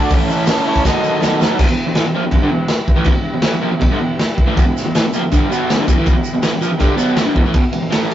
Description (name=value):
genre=garage rock duo or trio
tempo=161 BPM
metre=4/4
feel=straight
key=E minor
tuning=A4 = 442 Hz
part: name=clear harmonica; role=melody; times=0.0-1.4 s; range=C#5 to E5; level=-26 LUFS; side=left 2 dB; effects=overdrive
part: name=combo organ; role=sustained chords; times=0.0-8.1 s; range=C#4 to B4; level=-28 LUFS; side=equal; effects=none
part: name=crunchy overdriven guitar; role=riff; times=0.0-8.1 s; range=E2 to A4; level=-16 LUFS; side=right 1 dB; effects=none
part: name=raw garage drum kit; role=drums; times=0.1-8.1 s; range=crash cymbal, hi-hat, kick drum, ride cymbal, snare drum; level=-16 LUFS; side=equal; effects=none
part: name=tube shaker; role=percussion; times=0.1-1.5, 4.6-7.5 s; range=none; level=-34 LUFS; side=right 6 dB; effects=none
room=moderate studio reverb, RT60 0.6 s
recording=rough rehearsal-room recording, nothing above 7.6 kHz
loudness=-13 LUFS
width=side -12 dB against mid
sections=0.0-1.6 A section; 1.6-7.6 B section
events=drum fill 0.8-1.6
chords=0.1 A; 0.8 B7; 1.6 Em